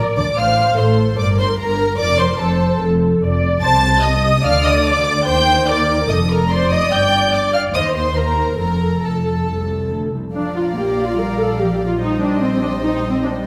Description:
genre	quick classical-period movement for string orchestra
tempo	146 BPM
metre	4/4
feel	rubato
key	F major, Bb major from 3.6 s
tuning	A4 = 440 Hz
part	warm symphonic violin section	melody	0.0-13.5 s	G5 to A6	-26 LUFS	equal	none
part	warm symphonic violin section	second line	0.0-13.5 s	A4 to A5	-23 LUFS	equal	none
part	dark symphonic viola section	accompaniment	0.0-13.3 s	C4 to Eb5	-22 LUFS	equal	none
part	dark studio cello section	bass	0.0-13.5 s	C2 to Bb3	-23 LUFS	equal	none
part	dark studio double bass section	bass	0.0-13.5 s	F1 to Eb2	-25 LUFS	equal	none
room	wet scoring stage reverb, RT60 1.5 s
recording	none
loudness	-17 LUFS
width	mono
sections	0.0-10.3 A section; 10.3-13.5 B section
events	none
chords	0.4 F/A; 1.2 Gmadd11; 2.0 F; 3.6 Cm6; 4.4 Dm; 5.3 Cm/Eb; 6.1 F; 6.9 G5; 7.7 Cm7/Eb; 8.6 F; 10.3 Bb; 12.0 Cm7/Bb

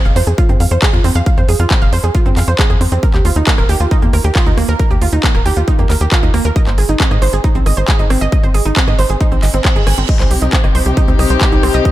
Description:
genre	uplifting trance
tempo	136 BPM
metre	4/4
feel	straight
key	unclear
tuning	A4 = 440 Hz
part	tight sequencer bass	bass	0.0-11.8 s	Eb1 to Ab2	-15 LUFS	equal	tube saturation, sidechain pumping
part	analog pluck	arpeggios	0.1-11.9 s	Bb3 to Ab5	-18 LUFS	right 3 dB	chorus, sidechain pumping, analog delay
part	big-room dance drum kit	drums	0.1-11.9 s	crash cymbal, handclaps, hi-hat, rim click	-20 LUFS	equal	sidechain pumping on hats, sidechain pumping on cymbals
part	electronic kick drum	drums	0.4-11.9 s	none	-13 LUFS	equal	none
part	reverse cymbal	sound effects	9.4-10.1 s	none	-27 LUFS	right 6 dB	none
part	rich chamber string section	sustained chords	10.1-11.9 s	C3 to G4	-17 LUFS	left 4 dB	vintage 12-bit sampler grit, sidechain pumping
room	light reverb, digital ambience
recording	none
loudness	-10 LUFS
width	side -15 dB against mid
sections	0.0-11.9 A section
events	reverse cymbal 9.4-10.1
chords	0.0 Fm; 3.0 Ebadd9; 6.6 Ab; 10.1 Cm

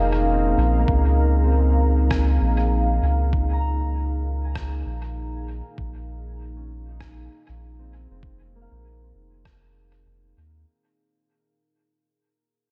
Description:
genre	ambient dub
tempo	98 BPM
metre	4/4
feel	swing 58% on 16ths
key	Bb minor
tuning	A4 = 439 Hz
part	deep dark ambient pad	sustained chords	0.0-10.7 s	Bb3 to Bb5	-29 LUFS	equal	chorus, built-in reverb
part	concert harp	arpeggios	0.0-11.8 s	Bb3 to Bb5	-33 LUFS	equal	low-pass filter, diffuse ambient delay
part	soft dub sub bass	bass	0.0-10.6 s	F1 to Eb2	-24 LUFS	equal	none
part	electronic kick drum	drums	0.9-9.6 s	none	-29 LUFS	equal	none
part	electronic rim click	drums	2.1-9.6 s	none	-40 LUFS	equal	dub echo
room	moderate lush hall reverb, RT60 2.4 s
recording	dreamy mix soaked in reverb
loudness	-21 LUFS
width	mono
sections	0.0-10.7 A section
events	fade-out 0.0-10.7; filter sweep on harp 0.0-10.7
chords	0.0 Bbm7; 0.9 Db6; 5.8 Bbm7

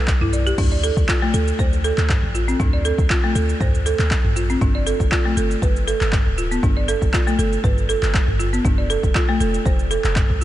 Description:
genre	afro house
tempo	119 BPM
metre	4/4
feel	swing 54% on 16ths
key	D dorian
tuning	A4 = 440 Hz
part	warm 808-style bass	bass	0.0-10.4 s	D1 to D2	-22 LUFS	equal	sidechain pumping
part	deep house drum kit	drums	0.1-10.4 s	crash cymbal, handclaps, shaker, toms	-25 LUFS	equal	none
part	electronic kick drum	drums	0.1-10.3 s	none	-20 LUFS	equal	none
part	folk marimba with hard mallets	arpeggios	0.2-10.4 s	A3 to D5	-22 LUFS	right 1 dB	sidechain pumping, analog delay
room	light reverb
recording	nothing above 10.6 kHz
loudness	-16 LUFS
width	side -13 dB against mid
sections	0.0-10.4 A section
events	none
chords	0.0 Em (rootless); 0.6 D5; 4.6 Gsus2; 8.6 F

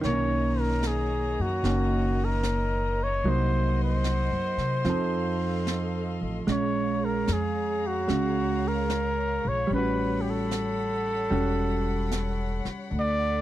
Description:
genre	jazz ballad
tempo	75 BPM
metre	4/4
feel	swing 68% on 8ths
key	unclear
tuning	A4 = 443 Hz
part	vintage hollow-body jazz guitar	accompaniment	0.0-12.9 s	D#3 to A4	-29 LUFS	right 3 dB	none
part	warm chamber string section	sustained chords	0.0-13.4 s	Bb3 to C6	-37 LUFS	left 3 dB	none
part	upright bass	bass	0.0-13.4 s	E1 to C3	-29 LUFS	left 1 dB	none
part	jazz brush drum kit	drums	0.0-13.4 s	brushed snare drum, hi-hat, snare drum	-37 LUFS	right 1 dB	none
part	mellow trumpet	melody	0.1-13.4 s	F#4 to D5	-29 LUFS	equal	slapback echo
room	little or no reverb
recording	dry, close 1970s-style studio recording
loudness	-24 LUFS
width	side -13 dB against mid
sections	0.0-13.4 A section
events	none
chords	0.0 Bmaj9; 3.2 Cm7b5; 4.8 F7; 6.5 A#m7; 9.7 A13; 12.9 D6

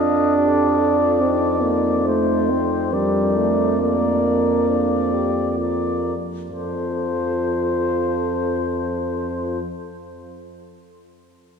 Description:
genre	classical, brass quintet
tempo	65-72 BPM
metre	4/4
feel	straight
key	F major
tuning	A4 = 440 Hz
part	mellow trumpet	melody	0.0-9.6 s	C5 to Eb5	-25 LUFS	left 6 dB	none
part	dark flugelhorn	second line	0.0-9.6 s	A4 to C5	-28 LUFS	right 5 dB	none
part	mellow French horn	accompaniment	0.0-9.6 s	D4 to G4	-28 LUFS	left 4 dB	none
part	warm trombone	accompaniment	0.0-9.6 s	F3 to D4	-22 LUFS	right 3 dB	none
part	warm tuba	bass	0.0-9.6 s	F2	-24 LUFS	right 1 dB	none
room	wet cathedral reverb, RT60 4.4 s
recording	recorded in a church or concert hall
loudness	-18 LUFS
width	side -6 dB against mid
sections	0.0-6.5 A section; 6.5-10.1 B section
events	slowing down 0.0-6.5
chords	0.0 F7; 2.9 Bb/F; 6.5 F

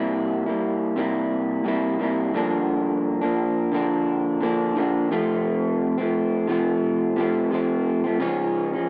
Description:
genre	indie pop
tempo	87 BPM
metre	4/4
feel	swing 55% on 16ths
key	F major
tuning	A4 = 435 Hz
part	electric guitar through a small old amp	solo	0.0-8.9 s	F2 to E4	-23 LUFS	equal	warbly pitch drift
room	moderate stone room reverb, RT60 1.0 s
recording	band playing live in one room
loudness	-23 LUFS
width	mono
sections	0.0-8.9 A section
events	none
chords	0.0 C7; 2.3 Gm7; 5.1 F; 8.2 Db

